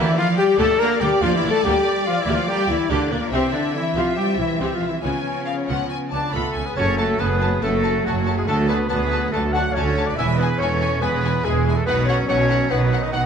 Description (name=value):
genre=cinematic, heroic adventure film score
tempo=142 BPM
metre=4/4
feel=straight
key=F# minor from 6.8 s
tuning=A4 = 441 Hz
part: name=warm symphonic violin section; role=melody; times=0.0-13.2 s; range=D5 to B5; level=-28 LUFS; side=left 4 dB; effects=none
part: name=flute section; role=second line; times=0.0-13.3 s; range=C#4 to Bb5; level=-31 LUFS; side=equal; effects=none
part: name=mellow clarinet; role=second line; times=0.0-13.3 s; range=Bb3 to F#5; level=-28 LUFS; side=left 2 dB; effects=none
part: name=warm symphonic violin section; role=second line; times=0.0-13.3 s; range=F#4 to Bb5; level=-33 LUFS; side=left 4 dB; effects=none
part: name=rich symphonic viola section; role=accompaniment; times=0.0-13.2 s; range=Bb3 to G4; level=-31 LUFS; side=right 1 dB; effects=none
part: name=bright trombone section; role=sustained chords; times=0.0-13.3 s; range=D3 to C4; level=-32 LUFS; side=right 3 dB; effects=none
part: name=mellow French horn section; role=sustained chords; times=0.0-13.3 s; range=F#3 to Bb4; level=-25 LUFS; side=left 5 dB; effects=none
part: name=mellow trumpet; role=stabs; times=0.0-13.2 s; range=Bb3 to F#5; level=-28 LUFS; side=right 2 dB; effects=none
part: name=clear symphonic cello section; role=bass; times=0.0-13.3 s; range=D2 to Bb3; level=-25 LUFS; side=right 2 dB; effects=none
part: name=warm symphonic double bass section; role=bass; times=0.0-13.3 s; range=E1 to D2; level=-25 LUFS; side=right 3 dB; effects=none
part: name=mellow cor anglais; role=second line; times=6.1-13.3 s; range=F#3 to F#4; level=-30 LUFS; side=right 2 dB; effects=none
room=moderate scoring stage reverb, RT60 1.5 s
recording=none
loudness=-18 LUFS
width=side -7 dB against mid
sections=0.0-6.8 A section; 6.8-13.3 B section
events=none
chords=0.0 Gm/D; 3.3 C; 5.0 C#7; 6.8 F#m; 8.5 D; 10.2 E; 11.9 B